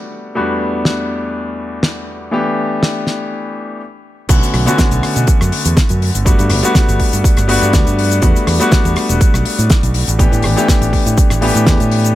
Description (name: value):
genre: nu-disco, nu disco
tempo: 122 BPM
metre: 4/4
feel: swing 54% on 16ths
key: unclear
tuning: A4 = 439 Hz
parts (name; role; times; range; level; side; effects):
- clear grand piano; accompaniment; 0.0-12.1 s; E2 to G4; -17 LUFS; left 2 dB; sidechain pumping, ping-pong delay
- damped 70s drum kit; drums; 0.9-12.1 s; crash cymbal, hi-hat, rim click, shaker, snare drum; -18 LUFS; left 1 dB; none
- fingered electric bass; bass; 4.3-12.1 s; E1 to B2; -15 LUFS; right 1 dB; none
- electronic kick drum; drums; 4.3-11.8 s; none; -13 LUFS; right 1 dB; none
room: small room reverb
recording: none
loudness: -11 LUFS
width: side -14 dB against mid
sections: 0.0-4.3 A section; 4.3-12.2 B section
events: stop 3.8-4.3; drop 4.3-12.2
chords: 0.4 Em11; 2.3 A9sus4; 4.3 Bm9; 6.3 Gmaj7; 8.2 Em11; 10.2 A9sus4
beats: | 0.36 0.85 1.34 1.83 | 2.32 2.82 3.31 3.80 | 4.29 4.78 5.28 5.77 | 6.26 6.75 7.24 7.73 | 8.22 8.72 9.21 9.70 | 10.19 10.68 11.18 11.67